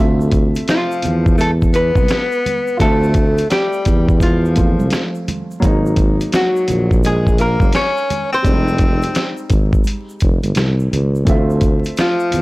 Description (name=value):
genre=hip hop, jazz-hop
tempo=85 BPM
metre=4/4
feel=swing 65% on 16ths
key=unclear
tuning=A4 = 440 Hz
part: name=dark upright piano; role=accompaniment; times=0.0-12.4 s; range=C3 to E5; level=-24 LUFS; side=right 1 dB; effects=none
part: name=breathy tuba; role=bass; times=0.0-12.4 s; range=F1 to E2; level=-16 LUFS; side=equal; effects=none
part: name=egg shaker and congas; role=percussion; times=0.2-12.4 s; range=none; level=-29 LUFS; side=right 3 dB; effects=none
part: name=dusty soul sampler-style drum kit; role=drums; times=0.3-12.4 s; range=hi-hat, kick drum, snare drum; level=-16 LUFS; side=equal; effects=none
part: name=archtop guitar, miked and amplified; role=melody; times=0.7-12.4 s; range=F4 to Db5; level=-20 LUFS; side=equal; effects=none
part: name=breathy tenor saxophone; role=second line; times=0.7-12.4 s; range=F3 to Db4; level=-21 LUFS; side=left 2 dB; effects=none
room=small room ambience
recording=blown-out, overdriven recording, vinyl crackle, overdrive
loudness=-13 LUFS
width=side -20 dB against mid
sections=0.0-12.4 A section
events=none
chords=0.0 Dm9; 5.6 Absus2; 8.4 Fm9; 11.3 Dm9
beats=0.68 1.39 2.09 | 2.80 3.50 4.21 4.92 | 5.62 6.33 7.03 7.74 | 8.45 9.15 9.86 10.56 | 11.27 11.97